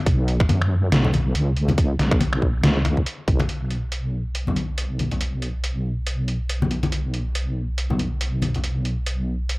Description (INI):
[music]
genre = deep dubstep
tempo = 140 BPM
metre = 4/4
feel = swing 57% on 16ths, half-time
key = unclear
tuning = A4 = 442 Hz
[part]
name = deep soft wobble bass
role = bass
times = 0.1-9.6 s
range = B1 to F#2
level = -22 LUFS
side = equal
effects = chorus
[part]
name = electronic kick drum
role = drums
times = 0.1-3.4 s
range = none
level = -20 LUFS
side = equal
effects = none
[part]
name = trip hop sampler-style drum kit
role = drums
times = 0.1-9.6 s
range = finger snaps, hi-hat, snare drum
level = -25 LUFS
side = equal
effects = overdrive
[part]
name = congas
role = percussion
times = 0.5-8.6 s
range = none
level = -26 LUFS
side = left 2 dB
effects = none
[sound]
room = little or no reverb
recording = dry, gritty hardware recording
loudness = -20 LUFS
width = side -23 dB against mid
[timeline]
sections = 0.0-3.5 A section; 3.5-9.6 B section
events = none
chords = none